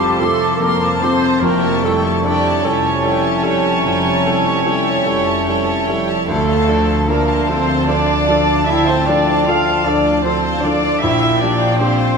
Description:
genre	classical, romantic movement for piano and orchestra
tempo	50 BPM (dotted quarters)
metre	12/8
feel	rubato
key	unclear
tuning	A4 = 441 Hz
part	warm baby grand piano	melody	0.0-12.2 s	Bb1 to A4	-21 LUFS	equal	none
part	warm chamber violin section	melody	0.0-12.2 s	F5 to C6	-28 LUFS	left 4 dB	none
part	dark cor anglais	second line	0.0-12.2 s	G3 to F4	-26 LUFS	right 2 dB	none
part	mellow hollow silver concert flute	second line	0.0-12.2 s	F5 to D6	-25 LUFS	left 2 dB	none
part	rich studio violin section	second line	0.0-12.2 s	C4 to F5	-27 LUFS	left 4 dB	none
part	warm studio viola section	accompaniment	0.0-12.2 s	G4 to F5	-19 LUFS	right 2 dB	none
part	clear trombone section	sustained chords	0.0-12.2 s	F3 to F4	-28 LUFS	right 3 dB	none
part	dark French horn section	sustained chords	0.0-12.2 s	G3 to F4	-22 LUFS	left 5 dB	none
part	dark trumpet	stabs	0.0-12.2 s	G5 to A5	-24 LUFS	right 2 dB	none
part	dark studio double bass section	bass	0.0-12.0 s	F1 to D2	-26 LUFS	right 3 dB	none
part	warm studio cello section	bass	0.0-12.1 s	D2 to Bb2	-24 LUFS	right 2 dB	none
part	timpani	percussion	1.4-2.6 s	F2	-33 LUFS	left 5 dB	none
room	wet scoring stage reverb, RT60 2.0 s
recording	none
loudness	-13 LUFS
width	side -5 dB against mid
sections	0.0-12.2 A section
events	none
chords	0.0 F; 1.4 A7/F; 6.3 Dm; 11.0 Gm7/Bb

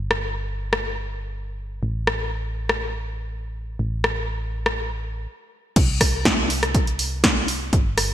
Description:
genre	piano house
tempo	122 BPM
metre	4/4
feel	straight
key	A minor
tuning	A4 = 440 Hz
part	solid FM bass	bass	0.0-8.1 s	G1 to C2	-28 LUFS	equal	sidechain pumping
part	punchy analog drum machine	drums	0.1-8.1 s	crash cymbal, hi-hat, rim click, snare drum	-22 LUFS	equal	gated reverb
part	electronic kick drum	drums	5.8-7.8 s	none	-20 LUFS	equal	none
room	light reverb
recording	bright 1980s-style digital production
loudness	-21 LUFS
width	side -11 dB against mid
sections	0.0-5.8 A section; 5.8-8.1 B section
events	stop 5.3-5.8; drop 5.8-8.1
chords	none

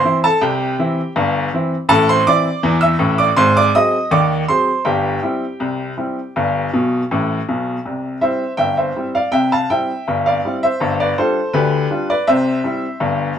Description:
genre	ragtime piano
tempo	81 BPM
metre	2/4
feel	straight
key	C major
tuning	A4 = 440 Hz
part	clear upright piano	solo	0.0-13.3 s	G1 to E6	-15 LUFS	equal	none
room	moderate club reverb, RT60 0.7 s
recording	none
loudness	-15 LUFS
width	side -8 dB against mid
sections	0.0-7.8 A section; 7.8-13.4 B section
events	upright piano fill 6.7-7.8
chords	0.0 C; 1.9 Am; 3.4 Ab7; 4.9 C/G; 6.4 G; 7.8 C; 10.8 G7; 12.3 C

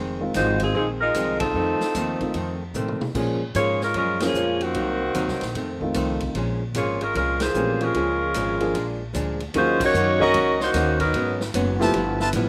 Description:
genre	jazz, big band swing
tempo	150 BPM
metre	4/4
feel	swing 65% on 8ths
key	Bb minor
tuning	A4 = 439 Hz
part	archtop guitar, miked and amplified	accompaniment	0.0-12.5 s	F2 to Gb4	-31 LUFS	equal	slapback echo
part	upright bass	bass	0.0-12.5 s	F1 to Bb2	-31 LUFS	equal	none
part	warm grand piano	accompaniment	0.2-11.9 s	Eb3 to Ab4	-28 LUFS	equal	none
part	swinging big-band drum kit	drums	0.3-12.5 s	crash cymbal, hi-hat, kick drum, ride cymbal, snare drum, toms	-36 LUFS	equal	none
part	warm saxophone section	melody	0.4-11.4 s	Eb3 to Eb5	-25 LUFS	equal	slapback echo
part	clear trumpet section	stabs	10.2-12.3 s	F4 to C6	-28 LUFS	equal	slapback echo
room	little or no reverb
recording	none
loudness	-23 LUFS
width	mono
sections	0.0-9.5 A section; 9.5-12.5 B section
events	band accent 1.3, 4.1, 7.3, 9.7; drum fill 2.7-3.1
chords	0.0 Fm7; 1.5 F7; 3.1 Bbm7; 4.7 Cm7b5; 5.5 F7; 6.3 Bbm7; 8.7 Bb7; 9.5 Ebm7; 11.1 Abm7; 11.9 G13

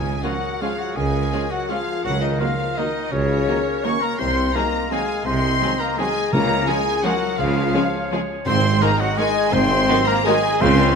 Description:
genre	classical, orchestral ballroom waltz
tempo	168 BPM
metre	3/4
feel	uneven beats, rubato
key	Db major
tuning	A4 = 440 Hz
part	rich symphonic violin section	melody	0.0-11.0 s	Db5 to Db6	-26 LUFS	left 3 dB	none
part	silver concert flute	second line	0.0-11.0 s	Db5 to Db6	-27 LUFS	left 2 dB	none
part	warm oboe	second line	0.0-11.0 s	Db4 to Db5	-28 LUFS	right 2 dB	none
part	mellow French horn section	sustained chords	0.0-11.0 s	Db3 to Db4	-25 LUFS	left 4 dB	none
part	clear symphonic cello section	bass	0.0-10.9 s	Ab2 to Db3	-27 LUFS	right 3 dB	none
part	rich symphonic double bass section	bass	0.0-10.9 s	Ab1 to Db2	-28 LUFS	right 4 dB	none
part	warm tuba	bass	0.0-10.9 s	Ab1 to Db2	-27 LUFS	right 3 dB	none
part	rich symphonic violin section	second line	0.2-10.3 s	Db4 to Bb4	-31 LUFS	left 6 dB	none
part	warm clarinet	second line	0.2-11.0 s	Gb4 to F5	-29 LUFS	left 2 dB	none
part	rich symphonic viola section	accompaniment	0.2-10.4 s	Eb3 to Db4	-28 LUFS	right 3 dB	none
part	warm trombone section	sustained chords	0.2-10.4 s	Db3 to Db4	-34 LUFS	right 4 dB	none
part	timpani	percussion	6.3-11.0 s	Ab2 to Db3	-28 LUFS	equal	none
room	wet scoring stage reverb, RT60 1.7 s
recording	none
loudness	-18 LUFS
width	side -5 dB against mid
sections	0.0-11.0 A section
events	none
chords	0.0 Db; 2.0 Ebm7/Db; 4.2 Ab7/C; 6.3 Db; 8.5 Ab

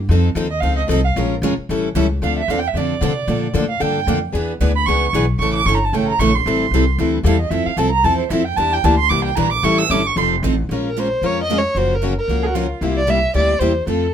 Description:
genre	acoustic string swing (jazz manouche)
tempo	226 BPM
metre	4/4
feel	swing 57% on 8ths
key	D minor, Bb minor from 10.7 s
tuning	A4 = 440 Hz
part	upright bass	bass	0.0-14.1 s	F1 to C3	-20 LUFS	equal	none
part	picked plugged-in steel-string acoustic guitar	accompaniment	0.1-14.1 s	C3 to Bb4	-22 LUFS	left 6 dB	none
part	picked steel-string acoustic guitar	accompaniment	0.1-14.1 s	C3 to B4	-24 LUFS	right 6 dB	none
part	dark violin	second line	0.5-10.3, 12.4-12.9 s	F4 to E6	-20 LUFS	right 4 dB	none
part	dark violin	melody	10.9-14.1 s	A4 to E5	-19 LUFS	equal	none
room	light reverb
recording	minimal, uncompressed stereo recording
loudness	-15 LUFS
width	side -9 dB against mid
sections	0.0-2.2 A section; 2.2-10.7 A section; 10.7-14.1 B section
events	violin solo 0.0-10.7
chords	0.1 F7; 1.2 Bbm7; 1.7 A7; 2.2 Dm7; 3.3 Bbmaj7; 4.3 E7; 5.4 A; 6.5 Am7; 7.5 Fmaj7; 8.6 Em7b5; 9.6 A7; 10.2 F7; 10.7 Bbm7; 11.8 Gbmaj7; 12.8 C7

